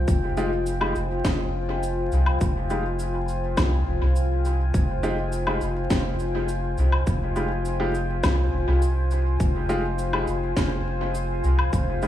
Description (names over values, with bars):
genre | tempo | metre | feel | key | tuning
ambient dub | 103 BPM | 4/4 | straight | F minor | A4 = 442 Hz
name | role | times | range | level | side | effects
deep dark ambient pad | sustained chords | 0.0-12.1 s | F4 to Ab5 | -29 LUFS | left 2 dB | chorus, built-in reverb
soft dub sub bass | bass | 0.0-12.1 s | F1 to C2 | -24 LUFS | equal | none
electronic cabasa, woodblock and snare drum | drums | 0.1-12.1 s | none | -30 LUFS | left 2 dB | overdrive, dub echo
electronic kick drum | drums | 0.1-11.8 s | none | -25 LUFS | equal | overdrive
clear upright piano | stabs | 0.4-12.1 s | Ab3 to G4 | -31 LUFS | equal | vintage 12-bit sampler grit, dub echo
room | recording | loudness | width
moderate echo chamber reverb, RT60 1.9 s, digital ambience | vinyl crackle, small room reverb, faint mains hum | -22 LUFS | side -12 dB against mid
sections
0.0-12.1 A section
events
none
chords
0.0 Fmadd9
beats
| 0.08 0.66 1.24 1.83 | 2.41 2.99 3.57 4.16 | 4.74 5.32 5.90 6.49 | 7.07 7.65 8.23 8.82 | 9.40 9.98 10.56 11.15 | 11.73